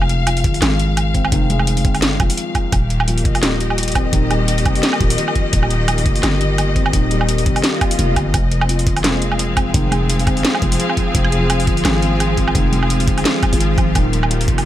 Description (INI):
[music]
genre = half-time drum and bass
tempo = 171 BPM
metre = 4/4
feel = swing 56% on 16ths, half-time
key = F minor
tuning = A4 = 436 Hz
[part]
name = rich studio string section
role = sustained chords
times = 0.0-14.7 s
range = Eb3 to F5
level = -22 LUFS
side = left 2 dB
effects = sidechain pumping
[part]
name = felt-muted upright piano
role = arpeggios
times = 0.0-14.7 s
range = Eb3 to C4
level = -23 LUFS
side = left 2 dB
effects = tape echo
[part]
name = growling 808-style bass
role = bass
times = 0.0-14.7 s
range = Eb1 to Ab1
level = -18 LUFS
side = equal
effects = none
[part]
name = drum and bass drum kit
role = drums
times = 0.0-14.6 s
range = hi-hat, snare drum, woodblock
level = -20 LUFS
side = right 1 dB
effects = none
[part]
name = electronic kick drum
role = drums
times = 0.4-14.6 s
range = none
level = -19 LUFS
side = equal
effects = none
[part]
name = swell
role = sound effects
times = 7.8-8.3 s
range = none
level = -26 LUFS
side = left 1 dB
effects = none
[part]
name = backwards swelling texture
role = texture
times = 10.0-14.7 s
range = F3 to F4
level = -28 LUFS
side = equal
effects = built-in reverb
[sound]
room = little or no reverb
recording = none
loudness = -14 LUFS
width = side -13 dB against mid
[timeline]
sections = 0.0-14.7 A section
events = swell 7.8-8.3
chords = 0.0 Fm; 2.7 Eb; 8.3 Fm; 14.0 Eb